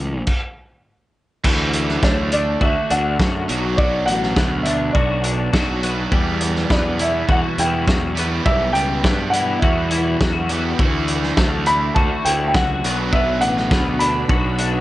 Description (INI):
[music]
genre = indie rock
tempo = 103 BPM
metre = 4/4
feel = straight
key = E minor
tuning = A4 = 440 Hz
[part]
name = twelve-string electric guitar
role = riff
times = 0.0-14.8 s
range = E3 to F#4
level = -25 LUFS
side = left 5 dB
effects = ensemble chorus
[part]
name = fuzz picked electric bass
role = bass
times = 0.0-14.8 s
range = A1 to G2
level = -22 LUFS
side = equal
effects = overdrive
[part]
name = loose indie drum kit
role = drums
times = 0.3-14.7 s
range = crash cymbal, hi-hat, kick drum, snare drum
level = -20 LUFS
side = equal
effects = none
[part]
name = cranked stack guitar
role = riff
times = 1.4-14.8 s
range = E2 to G4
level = -26 LUFS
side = right 6 dB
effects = overdrive, wide subtle chorus, tape echo
[part]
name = dark upright piano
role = melody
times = 2.0-14.8 s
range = C#5 to B5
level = -22 LUFS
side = equal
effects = plate reverb, tape echo
[part]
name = ensemble organ-string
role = sustained chords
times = 10.8-14.8 s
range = D4 to B5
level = -33 LUFS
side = left 1 dB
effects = none
[sound]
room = light reverb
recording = nothing above 10.3 kHz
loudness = -16 LUFS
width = side -16 dB against mid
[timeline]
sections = 0.0-1.4 A section; 1.4-14.8 B section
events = stop 0.3-1.4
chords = 0.0 A; 1.4 Dadd9; 3.5 Bm; 6.1 Emadd9; 10.8 Dadd9; 12.8 Bm